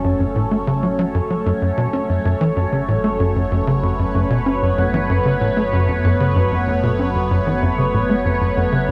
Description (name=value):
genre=ambient, sequencer-driven space music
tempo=95 BPM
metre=4/4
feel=straight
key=F# minor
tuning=A4 = 440 Hz
part: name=phased analog pad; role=sustained chords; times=0.0-8.9 s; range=F#3 to C#5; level=-22 LUFS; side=equal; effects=phaser, chorus
part: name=tight sequencer bass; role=riff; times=0.0-8.9 s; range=F#2 to C#4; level=-21 LUFS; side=equal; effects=lush chorus, delay
part: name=analog drone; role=bass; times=0.0-8.9 s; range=F#1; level=-29 LUFS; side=equal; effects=chorus
room=wet huge ambient reverb, RT60 9.2 s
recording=cassette tape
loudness=-18 LUFS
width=mono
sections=0.0-8.9 A section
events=none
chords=0.0 F#m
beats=0.36 0.99 | 1.62 2.25 2.88 3.52 | 4.15 4.78 5.41 6.04 | 6.67 7.31 7.94 8.57